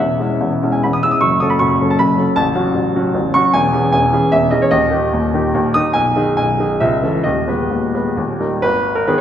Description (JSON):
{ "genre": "classical, romantic triple-time dance for piano with dotted rhythms", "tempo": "122-161 BPM", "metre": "3/4", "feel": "rubato", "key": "G# minor from 3.5 s", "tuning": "A4 = 435 Hz", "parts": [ { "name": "clear grand piano", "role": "solo", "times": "0.0-9.2 s", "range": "A0 to E6", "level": "-13 LUFS", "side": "equal", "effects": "none" } ], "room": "wet recital hall reverb, RT60 1.4 s", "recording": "recorded in a church or concert hall", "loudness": "-13 LUFS", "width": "side -9 dB against mid", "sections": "0.0-8.7 A section", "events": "none", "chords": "0.0 C#m/E; 1.2 F#m; 2.4 F#m/A; 3.5 C#m/E; 4.7 D#; 6.0 G#m/B; 6.8 A/C#; 7.3 G#m/D#; 8.2 D#; 8.7 G#m", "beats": "| 0.01 0.41 0.83 | 1.21 1.60 1.99 | 2.36 2.75 3.15 | 3.54 3.93 4.33 | 4.72 5.14 5.55 | 5.95 6.38 6.82 | 7.26 7.72 8.20 | 8.65 9.10" }